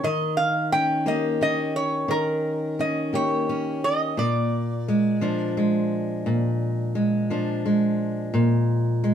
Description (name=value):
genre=acoustic country blues, solo or duo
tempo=58 BPM (dotted quarters)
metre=12/8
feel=straight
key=unclear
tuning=A4 = 441 Hz
part: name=lap resonator guitar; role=melody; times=0.0-5.5 s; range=Bb4 to G5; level=-25 LUFS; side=right 2 dB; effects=none
part: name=fingerpicked steel-string acoustic guitar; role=accompaniment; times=0.0-9.1 s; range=Bb2 to G4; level=-22 LUFS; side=equal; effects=none
room=wet studio reverb, RT60 0.7 s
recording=band playing live in one room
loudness=-21 LUFS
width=side -9 dB against mid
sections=0.0-9.1 A section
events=none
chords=0.0 Eb7; 4.2 Bb7